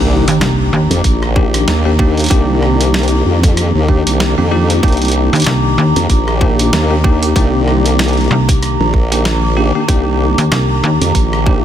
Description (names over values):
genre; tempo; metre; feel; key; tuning
glitch hop; 95 BPM; 4/4; swing 57% on 16ths; C minor; A4 = 436 Hz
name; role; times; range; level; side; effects
bell-like tine electric piano; stabs; 0.0-11.6 s; Bb3 to G4; -17 LUFS; left 1 dB; medium stereo tremolo, sidechain pumping, tape echo
formant-sweep wobble bass; bass; 0.0-11.6 s; Bb1 to F2; -14 LUFS; equal; chorus, tube saturation
impact; sound effects; 0.0-2.3 s; none; -24 LUFS; equal; none
warbly tape-like pad; texture; 0.0-11.6 s; Eb3 to D6; -20 LUFS; left 1 dB; chorus, built-in reverb, sidechain pumping
slap-like FM bass; bass; 0.3-0.9, 5.3-11.0 s; C2 to Eb2; -13 LUFS; equal; none
boom bap sampler-style drum kit; drums; 0.3-11.4 s; hi-hat, rim click, snare drum; -20 LUFS; right 1 dB; none
electronic kick drum; drums; 1.0-11.6 s; none; -12 LUFS; equal; none
room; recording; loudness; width
light reverb, digital ambience; none; -10 LUFS; side -10 dB against mid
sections
0.0-11.6 A section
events
impact 0.0-2.3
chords
0.0 Cm9